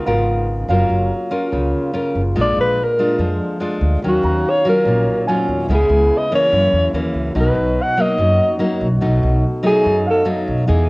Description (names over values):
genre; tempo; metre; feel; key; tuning
bossa nova; 144 BPM; 4/4; straight; unclear; A4 = 445 Hz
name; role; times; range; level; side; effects
nylon-string guitar; accompaniment; 0.0-10.9 s; F#2 to Bb4; -20 LUFS; left 1 dB; cassette tape, plate reverb
mellow French horn section; sustained chords; 0.0-10.9 s; B2 to E#5; -27 LUFS; equal; cassette tape, plate reverb
dark concert grand piano; accompaniment; 0.1-5.9, 10.1-10.8 s; F5 to A#5; -24 LUFS; right 2 dB; cassette tape, plate reverb
upright bass; bass; 0.1-10.9 s; F#1 to F#2; -19 LUFS; equal; none
breathy alto saxophone; melody; 2.4-10.3 s; F#4 to F#5; -16 LUFS; equal; cassette tape, plate reverb
room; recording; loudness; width
moderate studio reverb, RT60 0.6 s; home recording on cassette; -14 LUFS; side -24 dB against mid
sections
0.7-10.9 A section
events
alto saxophone solo 0.0-10.9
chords
0.0 Db13; 0.7 F#maj7; 2.4 A#7; 4.0 D#m9; 5.7 C#m7; 6.5 F#7; 7.4 Bmaj7; 9.0 B7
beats
0.28 | 0.69 1.11 1.53 1.95 | 2.36 2.78 3.19 3.61 | 4.03 4.45 4.86 5.28 | 5.69 6.11 6.53 6.94 | 7.36 7.78 8.19 8.61 | 9.02 9.44 9.86 10.27 | 10.69